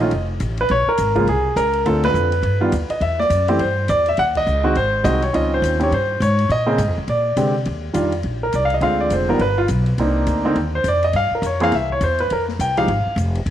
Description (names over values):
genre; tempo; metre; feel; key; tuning
jazz piano trio; 207 BPM; 4/4; swing 61% on 8ths; Eb major from 7.7 s; A4 = 440 Hz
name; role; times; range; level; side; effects
warm grand piano; melody; 0.0-13.2 s; Db3 to G5; -18 LUFS; equal; none
upright bass; bass; 0.0-13.5 s; E1 to C3; -21 LUFS; equal; none
open jazz drum kit; drums; 0.1-13.5 s; crash cymbal, hi-hat, kick drum, ride cymbal, snare drum; -35 LUFS; left 6 dB; none
room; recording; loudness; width
moderate plate reverb, RT60 2.1 s; 1960s-style stereo; -16 LUFS; side -11 dB against mid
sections
0.0-7.7 A section; 7.7-13.5 B section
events
band accent 2.0, 4.3; grand piano solo 7.7-13.5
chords
0.1 F; 0.7 Bbm7; 1.9 Dm7; 2.4 Gaug; 3.0 C; 4.2 Eb7(no3); 4.8 Ab7; 5.3 Dbmaj9; 6.5 Bbm7; 7.1 Bb13; 7.7 Ebmaj7sus2; 8.8 Dm7b5; 9.4 G; 10.0 Cm9; 11.1 Bbm6; 11.7 C; 12.3 Fmadd9